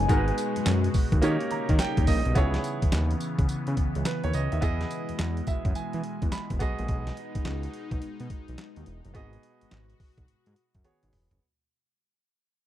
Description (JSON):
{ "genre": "R&B, new jack swing", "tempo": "106 BPM", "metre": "4/4", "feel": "swing 64% on 16ths", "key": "G# minor", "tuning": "A4 = 440 Hz", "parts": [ { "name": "soft octave-layered synth lead", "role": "melody", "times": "0.0-0.9 s", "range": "G#5", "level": "-33 LUFS", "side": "left 6 dB", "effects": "chorus, phaser, tape echo" }, { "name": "clear concert grand piano", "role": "accompaniment", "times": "0.0-11.4 s", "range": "G#3 to B5", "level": "-32 LUFS", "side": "right 4 dB", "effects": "none" }, { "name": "phased analog pad", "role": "sustained chords", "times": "0.0-11.4 s", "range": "B2 to F#4", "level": "-34 LUFS", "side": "left 2 dB", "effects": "phaser, chorus" }, { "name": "fat analog bass", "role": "bass", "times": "0.0-11.4 s", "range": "E1 to E3", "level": "-28 LUFS", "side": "equal", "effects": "none" }, { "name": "boom bap sampler-style drum kit", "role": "drums", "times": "0.1-11.4 s", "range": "handclaps, hi-hat, kick drum, snare drum, tambourine, toms", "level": "-27 LUFS", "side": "equal", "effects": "none" } ], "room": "little or no reverb", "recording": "dry, close 1970s-style studio recording", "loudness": "-25 LUFS", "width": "side -12 dB against mid", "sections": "0.0-2.4 A section; 2.4-11.4 B section", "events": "grand piano fill 1.2-2.4, 5.2-6.9; fade-out 2.4-11.4; drum fill 10.8-11.4", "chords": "0.1 G#m7; 1.2 D#7; 2.4 C#m7; 4.6 Emaj7; 6.6 B6; 9.2 G#m7" }